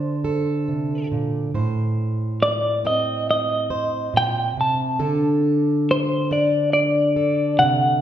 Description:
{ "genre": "acoustic folk-pop ballad", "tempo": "69 BPM", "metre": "4/4", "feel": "straight", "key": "unclear", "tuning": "A4 = 440 Hz", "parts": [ { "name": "clean electric guitar", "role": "melody", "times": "0.0-8.0 s", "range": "C5 to A5", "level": "-20 LUFS", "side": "left 1 dB", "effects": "tremolo" }, { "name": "fingerpicked plugged-in steel-string acoustic guitar", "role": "accompaniment", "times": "0.0-8.0 s", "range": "A2 to C5", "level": "-22 LUFS", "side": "right 1 dB", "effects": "none" } ], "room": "wet recital hall reverb, RT60 1.5 s", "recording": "recorded in a church or concert hall", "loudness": "-18 LUFS", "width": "side -10 dB against mid", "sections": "0.0-8.0 A section", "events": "none", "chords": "0.0 D5; 1.5 Adim; 5.0 D5", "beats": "0.67 | 1.54 2.41 3.28 4.15 | 5.01 5.87 6.73 7.59" }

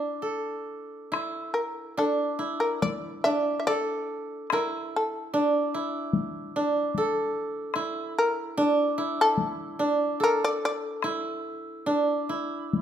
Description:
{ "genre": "japanese traditional, Japanese chamber music", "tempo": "73 BPM", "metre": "4/4", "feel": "uneven beats, rubato", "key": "unclear", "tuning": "A4 = 440 Hz", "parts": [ { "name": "koto", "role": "second line", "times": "0.0-12.8 s", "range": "D4 to A4", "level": "-27 LUFS", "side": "right 2 dB", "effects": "none" }, { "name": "solo taiko drums", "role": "percussion", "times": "1.1-12.8 s", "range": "none", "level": "-29 LUFS", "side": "left 5 dB", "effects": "none" }, { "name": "shamisen", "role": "melody", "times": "1.5-12.8 s", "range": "A4 to E5", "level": "-26 LUFS", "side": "left 2 dB", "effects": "none" } ], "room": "moderate recital hall reverb, RT60 1.4 s", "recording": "minimal, uncompressed stereo recording", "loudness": "-25 LUFS", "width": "side -9 dB against mid", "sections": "0.0-1.1 A section; 1.1-12.8 B section", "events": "none", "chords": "none", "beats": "0.22 | 1.11 1.96 2.80 3.65 | 4.49 5.31 6.13 6.95 | 7.76 8.56 9.38 10.21 | 11.03 11.86 12.72" }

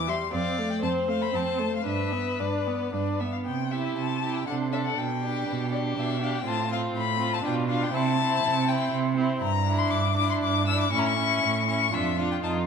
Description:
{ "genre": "quick classical-period movement for string quartet", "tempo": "120 BPM", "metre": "3/4", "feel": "rubato", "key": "C major, D minor from 9.4 s", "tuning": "A4 = 440 Hz", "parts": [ { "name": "warm violin", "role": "melody", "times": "0.0-12.5 s", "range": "D5 to E6", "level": "-29 LUFS", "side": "left 8 dB", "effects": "none" }, { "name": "rich viola", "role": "accompaniment", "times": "0.0-12.7 s", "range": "G3 to E4", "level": "-31 LUFS", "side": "right 2 dB", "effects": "none" }, { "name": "clear cello", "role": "bass", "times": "0.0-12.7 s", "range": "E2 to C3", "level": "-29 LUFS", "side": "right 5 dB", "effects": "none" }, { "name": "rich violin", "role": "second line", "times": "0.1-12.7 s", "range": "E4 to E5", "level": "-32 LUFS", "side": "left 3 dB", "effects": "none" } ], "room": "moderate recital hall reverb, RT60 1.7 s", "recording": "minimal, uncompressed stereo recording, faint mains hum", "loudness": "-24 LUFS", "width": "side -6 dB against mid", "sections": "0.0-3.5 A section; 3.5-12.7 B section", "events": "none", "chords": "0.3 F; 1.9 G; 3.5 C; 4.5 D7/C; 5.0 G/B; 6.5 F/A; 7.4 G7/B; 7.9 C; 9.4 Gm6; 10.9 A; 11.9 Dm/F", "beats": "| 0.33 0.83 1.34 | 1.87 2.40 2.93 | 3.46 3.97 4.48 | 4.98 5.47 5.97 | 6.46 6.95 7.45 | 7.94 8.43 8.92 | 9.42 9.92 10.42 | 10.92 11.43 11.93 | 12.43" }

